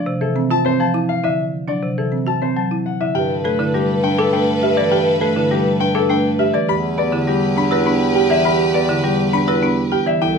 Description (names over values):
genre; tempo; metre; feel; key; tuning
classical, minimalist pattern music; 102 BPM; 3/4; straight; G major from 3.2 s; A4 = 437 Hz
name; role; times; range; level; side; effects
clear concert grand piano; melody; 0.0-10.4 s; G4 to B5; -21 LUFS; left 9 dB; none
marimba with medium hard mallets; accompaniment; 0.0-10.3 s; C3 to E4; -20 LUFS; right 1 dB; none
folk marimba with medium hard mallets; arpeggios; 0.0-10.4 s; C4 to D5; -22 LUFS; right 7 dB; none
clear chamber violin section; sustained chords; 3.1-10.4 s; G4 to E5; -26 LUFS; left 3 dB; none
clear bass clarinet; bass; 3.1-10.4 s; C2 to G2; -22 LUFS; left 3 dB; none
dark French horn; second line; 3.2-10.4 s; G4 to B4; -24 LUFS; right 7 dB; none
room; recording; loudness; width
moderate large studio reverb, RT60 0.8 s; none; -15 LUFS; side -5 dB against mid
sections
0.0-3.2 A section; 3.2-10.4 B section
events
none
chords
0.0 Fmaj7; 1.4 D7; 3.2 Gadd9; 6.7 Em